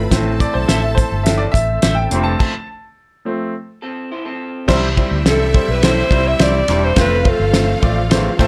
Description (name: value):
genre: uptempo 1960s-style soul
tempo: 105 BPM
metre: 4/4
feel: straight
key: C major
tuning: A4 = 440 Hz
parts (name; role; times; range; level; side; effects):
- warm studio string section; second line; 0.0-8.5 s; E4 to B5; -29 LUFS; equal; none
- overdriven tonewheel organ; sustained chords; 0.0-8.5 s; F3 to A4; -31 LUFS; equal; none
- electric guitar through a small old amp; riff; 0.0-0.1, 3.8-4.7 s; C4 to C5; -29 LUFS; equal; none
- warm baritone saxophone; riff; 0.0-8.3 s; E2 to C3; -27 LUFS; equal; none
- vintage muted fingered electric bass; bass; 0.0-8.5 s; E1 to D2; -22 LUFS; equal; none
- clear grand piano; accompaniment; 0.1-8.5 s; E3 to A5; -22 LUFS; equal; none
- cloth-damped thuddy drum kit; drums; 0.1-8.5 s; crash cymbal, hi-hat, kick drum, ride cymbal, snare drum; -19 LUFS; equal; none
- semi-hollow electric guitar; stabs; 0.7-2.0 s; A4 to E5; -26 LUFS; equal; lush chorus
- breathy alto saxophone; melody; 5.3-7.9 s; A4 to E5; -21 LUFS; equal; none
room: moderate club reverb, RT60 0.6 s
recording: none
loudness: -16 LUFS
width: mono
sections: 0.0-4.7 A section; 4.7-8.5 B section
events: grand piano solo 0.0-4.7; stop 2.4-4.7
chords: 0.1 Am; 2.1 F; 4.7 C; 7.0 F